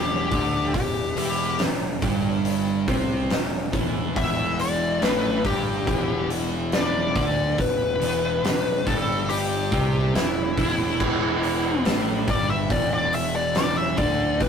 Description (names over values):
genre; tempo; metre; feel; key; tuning
stoner and doom metal; 70 BPM; 4/4; straight; E minor; A4 = 442 Hz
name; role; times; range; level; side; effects
fuzz lead guitar; melody; 0.0-14.5 s; E4 to E5; -25 LUFS; left 2 dB; wah, distortion
fuzz guitar; riff; 0.0-14.5 s; E2 to D4; -29 LUFS; left 3 dB; distortion
thick fuzz guitar; riff; 0.0-14.5 s; E2 to D4; -30 LUFS; right 5 dB; distortion
fuzz picked electric bass; bass; 0.0-14.5 s; E1 to D2; -30 LUFS; right 1 dB; overdrive
oversized low-tuned drum kit; drums; 0.3-14.5 s; crash cymbal, hi-hat, kick drum, snare drum; -26 LUFS; equal; none
room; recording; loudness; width
moderate small room ambience, RT60 0.5 s; rough rehearsal-room recording, tube saturation; -21 LUFS; side -7 dB against mid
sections
0.0-14.5 A section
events
lead electric guitar solo 0.0-14.5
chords
0.0 Em